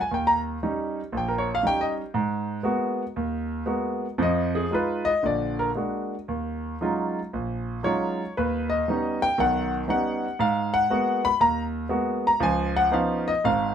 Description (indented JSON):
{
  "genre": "solo jazz",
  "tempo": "117 BPM",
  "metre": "4/4",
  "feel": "swing 69% on 8ths, rubato",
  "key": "unclear",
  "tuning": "A4 = 441 Hz",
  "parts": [
    { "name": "warm concert grand piano", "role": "solo", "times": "0.0-13.7 s", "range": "G#1 to B5", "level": "-23 LUFS", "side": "equal", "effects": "none" }
  ],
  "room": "moderate studio reverb, RT60 0.6 s",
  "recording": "band playing live in one room",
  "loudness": "-23 LUFS",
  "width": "side -8 dB against mid",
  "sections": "0.0-13.7 A section",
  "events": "grand piano solo 0.0-13.7",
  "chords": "0.1 D#7; 2.2 G#m9; 4.2 Fm7b5; 5.2 A#aug7; 6.3 D#m11; 8.4 D#7alt; 10.4 G#m9; 12.4 C#9"
}